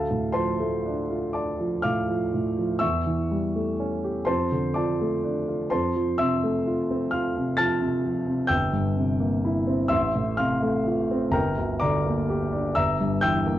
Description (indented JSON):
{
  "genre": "classical, romantic nocturne for solo piano",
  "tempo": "42 BPM (dotted quarters)",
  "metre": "6/8",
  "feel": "uneven beats, rubato",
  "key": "D minor",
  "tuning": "A4 = 440 Hz",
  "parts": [
    { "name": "warm baby grand piano", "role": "solo", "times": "0.0-13.6 s", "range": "G1 to A6", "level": "-22 LUFS", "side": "equal", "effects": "none" }
  ],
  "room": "moderate large studio reverb, RT60 1.1 s",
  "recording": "dark, warm production",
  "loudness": "-22 LUFS",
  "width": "side -13 dB against mid",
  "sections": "0.0-13.6 A section",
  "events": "none",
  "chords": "0.0 Dm; 2.8 A7/E; 4.3 Dm/F; 5.7 F; 8.5 C7/G; 9.9 F/A; 11.3 Gm; 12.8 Edim/G"
}